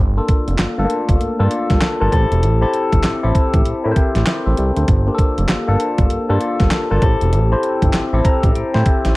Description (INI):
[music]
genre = R&B, new jack swing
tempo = 98 BPM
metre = 4/4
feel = swing 62% on 16ths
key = G dorian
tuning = A4 = 442 Hz
[part]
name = fat analog bass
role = bass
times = 0.0-9.1 s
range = E1 to A2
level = -17 LUFS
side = equal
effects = none
[part]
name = tine electric piano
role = accompaniment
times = 0.2-9.2 s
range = A3 to Bb5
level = -19 LUFS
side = left 2 dB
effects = phaser
[part]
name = clean 12-bit digital drum machine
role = drums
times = 0.3-9.2 s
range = handclaps, hi-hat, kick drum, snare drum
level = -17 LUFS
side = equal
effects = none
[sound]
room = little or no reverb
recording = none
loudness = -14 LUFS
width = side -20 dB against mid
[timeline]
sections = 0.0-9.2 A section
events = tine electric piano fill 7.9-9.2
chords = 0.0 Gm7; 2.1 Am7; 4.9 Gm7; 7.0 Am7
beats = 0.59 1.21 1.82 | 2.43 3.04 3.65 4.27 | 4.88 5.49 6.10 6.72 | 7.33 7.94 8.55 9.16